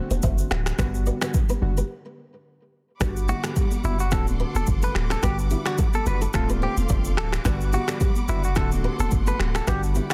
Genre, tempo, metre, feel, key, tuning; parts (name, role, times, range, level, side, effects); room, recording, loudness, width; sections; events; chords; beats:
afrobeats; 108 BPM; 4/4; swing 55% on 16ths; G major; A4 = 440 Hz
warm analog keys; accompaniment; 0.0-10.1 s; D3 to F#4; -33 LUFS; equal; chorus
nylon-string guitar; riff; 0.1-10.1 s; D4 to F#5; -36 LUFS; equal; tape echo
punchy sub bass; bass; 0.1-10.0 s; D1 to G1; -27 LUFS; equal
afro-pop drum kit; drums; 0.1-10.1 s; finger snaps, kick drum, rim click, shaker; -27 LUFS; equal; soft clipping on snare
congas; percussion; 0.1-10.1 s; -38 LUFS; equal
warm studio string section; sustained chords; 3.0-10.1 s; G3 to D6; -40 LUFS; equal
direct-recorded clean electric guitar; melody; 3.3-10.1 s; E4 to B4; -33 LUFS; equal; tape echo
little or no reverb; dense, heavily limited modern master; -24 LUFS; mono
0.0-3.0 A section; 3.0-10.1 B section
break 1.9-3.0
0.0 D7; 0.8 Gmaj7; 1.9 N.C.; 3.0 Gmaj7; 4.1 D7; 5.2 Gmaj7; 6.3 Dm7; 7.5 Gmaj7; 8.6 D7
0.23 | 0.79 1.34 1.90 2.45 | 3.01 3.56 4.12 4.67 | 5.23 5.79 6.34 6.90 | 7.45 8.01 8.56 9.12 | 9.67